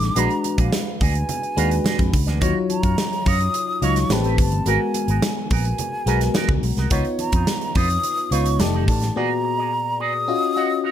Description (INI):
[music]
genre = polished 1980s jazz-funk pop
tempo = 107 BPM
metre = 4/4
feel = straight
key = Eb minor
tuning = A4 = 442 Hz
[part]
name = breathy concert flute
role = melody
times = 0.0-10.9 s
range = F5 to Eb6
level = -25 LUFS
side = equal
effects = plate reverb
[part]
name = FM electric piano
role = accompaniment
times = 0.0-10.9 s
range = Bb2 to Eb5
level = -24 LUFS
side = left 4 dB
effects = wide subtle chorus, plate reverb
[part]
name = electric guitar with an envelope filter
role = riff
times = 0.0-10.9 s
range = Cb4 to Gb5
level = -28 LUFS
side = right 11 dB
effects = wide subtle chorus
[part]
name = fingered electric bass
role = bass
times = 0.0-9.1 s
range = F1 to Gb2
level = -21 LUFS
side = equal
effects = none
[part]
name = modern studio drum kit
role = drums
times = 0.0-9.1 s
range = hi-hat, kick drum, snare drum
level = -23 LUFS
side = right 1 dB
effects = gated reverb
[part]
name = congas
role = percussion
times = 0.0-9.2 s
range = none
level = -36 LUFS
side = right 2 dB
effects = none
[sound]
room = light reverb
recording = none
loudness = -18 LUFS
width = side -10 dB against mid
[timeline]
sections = 0.0-10.9 A section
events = none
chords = 0.2 Bb7b9b13 (rootless); 2.4 Ebm9; 4.1 Am9; 4.7 Abm9; 6.9 Db9; 8.6 F13; 9.2 Bb7b9b13; 10.3 Ebm9